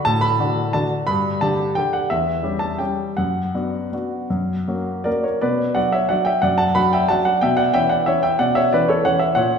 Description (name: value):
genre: classical, piano waltz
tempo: 155-192 BPM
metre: 3/4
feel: rubato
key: B minor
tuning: A4 = 441 Hz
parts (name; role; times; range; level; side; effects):
- clear grand piano; solo; 0.0-9.6 s; E2 to B5; -17 LUFS; equal; none
room: wet recital hall reverb, RT60 1.6 s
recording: recorded in a church or concert hall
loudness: -17 LUFS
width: side -6 dB against mid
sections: 0.0-5.4 A section; 5.4-9.6 B section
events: none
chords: 0.0 D; 1.1 G; 2.1 C#dim/E; 3.2 Bm/F#; 4.3 F#; 5.4 Bm; 7.4 Bmadd9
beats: | 0.04 0.38 0.73 | 1.07 1.41 1.76 | 2.10 2.44 2.80 | 3.17 3.55 3.93 | 4.30 4.68 5.06 | 5.43 5.77 6.11 | 6.44 6.77 7.10 | 7.43 7.75 8.08 | 8.41 8.73 9.05 | 9.37